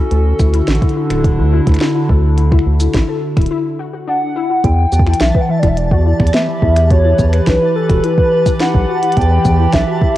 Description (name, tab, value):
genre	IDM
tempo	106 BPM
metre	4/4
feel	straight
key	E minor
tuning	A4 = 440 Hz
part	warbly tape-like pad	sustained chords	0.0-10.2 s	D3 to B5	-19 LUFS	right 1 dB	chorus, built-in reverb, vintage 12-bit sampler grit, cassette tape
part	warbly dusty pluck	arpeggios	0.0-10.1 s	E3 to B4	-22 LUFS	left 8 dB	ensemble chorus, cassette tape, analog delay
part	round analog bass	bass	0.1-9.8 s	D1 to E2	-14 LUFS	equal	none
part	glitchy drum kit	drums	0.1-9.8 s	finger snaps, hi-hat, shaker, snare drum	-21 LUFS	right 1 dB	overdrive, small room reverb, cassette tape
part	electronic kick drum	drums	0.4-10.1 s	none	-14 LUFS	equal	overdrive, small room reverb, cassette tape
part	warbly nostalgic lead	melody	4.1-10.2 s	A4 to G5	-16 LUFS	right 1 dB	analog chorus, tape echo
part	twinkling granular texture	texture	5.0-10.2 s	A5	-31 LUFS	equal	built-in reverb, cassette tape
room	light reverb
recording	home recording on cassette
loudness	-11 LUFS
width	side -14 dB against mid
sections	0.0-4.6 A section; 4.6-10.2 B section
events	break 3.5-4.6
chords	0.1 Dadd9; 4.6 Em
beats	| 0.11 0.68 1.25 1.81 | 2.38 2.94 3.51 4.08 | 4.64 5.21 5.77 6.34 | 6.91 7.47 8.04 8.60 | 9.17 9.73